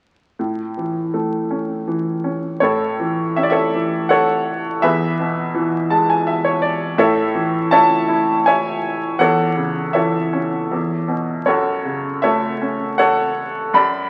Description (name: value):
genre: classical, lyrical solo piano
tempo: 81 BPM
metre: 3/4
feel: rubato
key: A major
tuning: A4 = 440 Hz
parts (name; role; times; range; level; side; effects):
- bright baby grand piano; solo; 0.4-14.1 s; E2 to B5; -18 LUFS; equal; none
room: moderate recital hall reverb, RT60 1.6 s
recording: very old 78 rpm record, vinyl crackle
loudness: -19 LUFS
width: mono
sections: 0.4-2.6 A section; 2.6-14.1 B section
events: grand piano fill 5.6-7.0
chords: 0.4 A; 4.8 E; 7.0 A; 9.2 A/E; 10.7 E5; 11.5 F#m